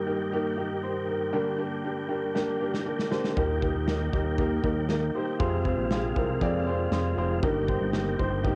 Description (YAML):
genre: piano-driven pop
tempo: 118 BPM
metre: 4/4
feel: straight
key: Eb major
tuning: A4 = 437 Hz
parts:
  - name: warm upright piano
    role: accompaniment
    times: 0.0-8.6 s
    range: G2 to D5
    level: -31 LUFS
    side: equal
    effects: cassette tape
  - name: tonewheel organ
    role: sustained chords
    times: 0.0-8.6 s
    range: G2 to G4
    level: -36 LUFS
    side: equal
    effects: chorus vibrato, fast rotary speaker, cassette tape
  - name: modern studio drum kit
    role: drums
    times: 2.4-8.6 s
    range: kick drum, snare drum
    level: -34 LUFS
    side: equal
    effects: none
  - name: fat analog bass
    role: bass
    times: 3.4-8.6 s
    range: F1 to F2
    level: -32 LUFS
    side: equal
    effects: none
room: moderate spring reverb, RT60 1.9 s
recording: home recording on cassette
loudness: -28 LUFS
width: mono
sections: 0.0-8.6 A section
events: drum fill 2.4-3.4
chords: 0.0 Eb/G; 1.3 Gm; 3.4 Eb; 5.4 Fm; 7.4 Eb/G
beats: 0.33 0.84 | 1.34 1.85 2.36 2.86 | 3.37 3.88 4.38 4.89 | 5.40 5.91 6.41 6.92 | 7.43 7.93 8.44